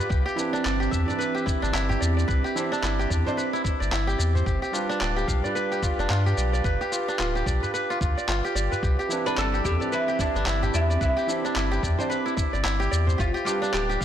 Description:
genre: organic downtempo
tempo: 110 BPM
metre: 4/4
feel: swing 59% on 16ths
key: unclear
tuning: A4 = 441 Hz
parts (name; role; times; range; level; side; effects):
- airy breathy pad; sustained chords; 0.0-14.0 s; C4 to D6; -33 LUFS; right 4 dB; chorus, sidechain pumping
- kora; arpeggios; 0.0-14.0 s; D4 to F5; -28 LUFS; equal; ping-pong delay
- electronic shaker and handclaps; drums; 0.0-14.0 s; none; -33 LUFS; left 1 dB; none
- warm sub bass; bass; 0.1-14.0 s; D1 to G2; -25 LUFS; left 1 dB; transformer saturation
- electronic kick drum; drums; 0.1-14.0 s; none; -28 LUFS; equal; none
- felt-muted upright piano; accompaniment; 0.4-14.0 s; E3 to D5; -33 LUFS; right 4 dB; sidechain pumping, ping-pong delay
- udu; percussion; 1.1-13.2 s; none; -34 LUFS; right 1 dB; none
- oud; melody; 9.3-14.0 s; D4 to B4; -28 LUFS; equal; vintage 12-bit sampler grit, ping-pong delay
room: light reverb, small room ambience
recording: blown-out, overdriven recording, overdrive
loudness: -22 LUFS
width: side -10 dB against mid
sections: 0.0-14.0 A section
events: kick drops out 8.3-8.8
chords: 0.1 Cmaj9; 4.5 G7; 8.8 Cmaj9; 13.2 G7

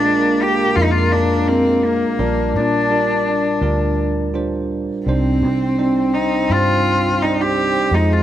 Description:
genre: acoustic folk-pop ballad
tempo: 84 BPM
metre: 4/4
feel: straight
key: C minor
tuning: A4 = 441 Hz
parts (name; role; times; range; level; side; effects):
- warm cello; melody; 0.0-8.2 s; Bb3 to G4; -18 LUFS; equal; none
- warm French horn; second line; 0.0-8.2 s; Ab3 to D4; -22 LUFS; left 4 dB; none
- bell-like tine electric piano; accompaniment; 0.0-8.2 s; F1 to D5; -22 LUFS; right 4 dB; none
- vintage muted fingered electric bass; bass; 0.0-8.2 s; Bb1 to C3; -22 LUFS; equal; none
room: moderate plate reverb, RT60 3.0 s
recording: none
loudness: -15 LUFS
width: side -11 dB against mid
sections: 0.0-8.2 A section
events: none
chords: 0.0 Bb7; 2.2 Gm7/Bb; 5.1 Cmadd9

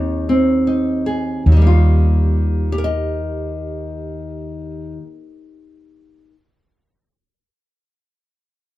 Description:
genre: folk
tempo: 71-82 BPM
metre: 4/4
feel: straight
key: Eb major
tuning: A4 = 443 Hz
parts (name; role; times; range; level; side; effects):
- nylon-string guitar; accompaniment; 0.0-6.3 s; Eb2 to Eb5; -20 LUFS; equal; none
- woody fretless electric bass; bass; 0.0-4.9 s; Eb2; -16 LUFS; equal; none
room: moderate studio reverb, RT60 0.5 s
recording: dark, warm production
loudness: -14 LUFS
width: side -16 dB against mid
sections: 0.0-1.5 A section; 1.5-4.8 B section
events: slowing down 0.0-1.5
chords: 0.0 Ab/Eb; 1.5 Ebadd9

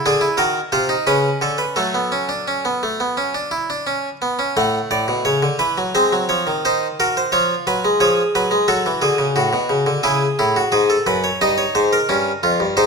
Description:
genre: classical, baroque-style 3-part fugue for harpsichord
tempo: 87 BPM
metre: 4/4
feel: straight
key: unclear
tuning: A4 = 440 Hz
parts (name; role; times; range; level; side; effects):
- harpsichord; solo; 0.0-12.9 s; E#2 to F#5; -16 LUFS; equal; none
room: moderate recital hall reverb, RT60 1.6 s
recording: close, detailed microphones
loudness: -16 LUFS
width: side -4 dB against mid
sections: 0.0-4.6 A section; 4.6-12.9 B section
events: none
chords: 0.4 Cm7b5; 1.1 Bm9/C#; 1.8 F#m; 4.6 F#m/A; 5.9 G#7; 7.3 C#7/E#; 8.7 F#m; 10.1 C#m; 11.4 D#7/G

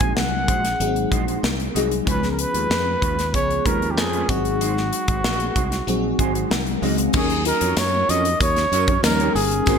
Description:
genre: polished 1980s jazz-funk pop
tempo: 95 BPM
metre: 4/4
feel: straight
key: unclear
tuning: A4 = 441 Hz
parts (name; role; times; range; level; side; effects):
- breathy flugelhorn; melody; 0.0-9.8 s; Gb4 to Ab5; -23 LUFS; equal; none
- FM electric piano with soft pad layer; accompaniment; 0.0-9.8 s; F3 to Ab5; -24 LUFS; left 2 dB; phaser, wide subtle chorus
- mellow electric guitar; riff; 0.0-9.8 s; Ab3 to Eb5; -29 LUFS; right 5 dB; analog chorus
- modern bright fingered electric bass; bass; 0.0-9.8 s; G1 to Gb2; -26 LUFS; equal; none
- modern studio drum kit; drums; 0.0-9.8 s; crash cymbal, hi-hat, kick drum, snare drum; -24 LUFS; equal; gated reverb
- tambourine; percussion; 7.1-9.8 s; none; -37 LUFS; left 7 dB; none
room: moderate lush hall reverb, RT60 1.9 s, studio reverb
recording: bright 1980s-style digital production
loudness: -18 LUFS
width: side -6 dB against mid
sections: 0.0-7.1 A section; 7.1-9.8 B section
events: FM electric piano fill 5.9-7.1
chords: 0.0 Ab7; 2.1 Db7; 4.3 Ab7; 7.1 Ebm7; 9.0 Eb7

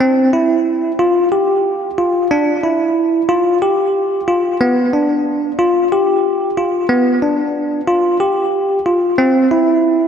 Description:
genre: progressive instrumental, progressive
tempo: 183 BPM (eighths)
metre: 7/8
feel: straight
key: unclear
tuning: A4 = 441 Hz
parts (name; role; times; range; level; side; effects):
- bell-like tine electric piano; solo; 0.0-10.1 s; B3 to G4; -12 LUFS; equal; diffuse ambient delay
room: wet lush hall reverb, RT60 2.8 s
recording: dreamy mix soaked in reverb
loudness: -13 LUFS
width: side -7 dB against mid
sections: 0.0-10.1 A section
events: none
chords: none

